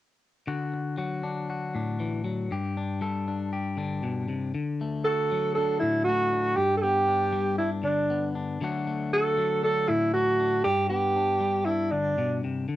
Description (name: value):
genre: highlife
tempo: 118 BPM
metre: 4/4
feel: swing 53% on 16ths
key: D major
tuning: A4 = 440 Hz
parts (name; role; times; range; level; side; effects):
- clean electric guitar; accompaniment; 0.5-12.8 s; G2 to A4; -29 LUFS; left 3 dB; cassette tape
- breathy alto saxophone; melody; 5.0-12.4 s; D4 to A4; -24 LUFS; right 2 dB; cassette tape
room: wet studio ambience, RT60 0.5 s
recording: home recording on cassette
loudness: -24 LUFS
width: side -14 dB against mid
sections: 0.5-4.5 A section; 4.5-12.8 B section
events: none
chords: 0.5 D; 2.5 G; 4.5 D; 6.6 G; 8.6 D; 10.6 G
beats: | 0.47 0.98 1.49 2.00 | 2.51 3.02 3.53 4.03 | 4.54 5.05 5.56 6.07 | 6.58 7.08 7.59 8.10 | 8.61 9.12 9.63 10.13 | 10.64 11.15 11.66 12.17 | 12.68